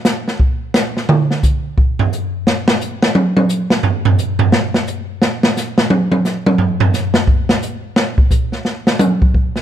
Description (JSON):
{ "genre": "jazz", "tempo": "174 BPM", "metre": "4/4", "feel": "swing 63% on 8ths", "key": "none", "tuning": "none", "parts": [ { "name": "open jazz drum kit", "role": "drums", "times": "0.0-9.6 s", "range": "hi-hat, kick drum, snare drum, toms", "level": "-13 LUFS", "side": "right 1 dB", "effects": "none" } ], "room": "light reverb", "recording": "close, detailed microphones", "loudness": "-13 LUFS", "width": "side -10 dB against mid", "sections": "0.0-9.6 A section", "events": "drum solo 0.0-9.6", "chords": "none", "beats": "0.06 0.40 0.74 | 1.09 1.43 1.78 2.12 | 2.46 2.81 3.15 3.50 | 3.84 4.19 4.53 4.87 | 5.22 5.56 5.91 6.25 | 6.59 6.94 7.28 7.63 | 7.97 8.31 8.66 9.00 | 9.35" }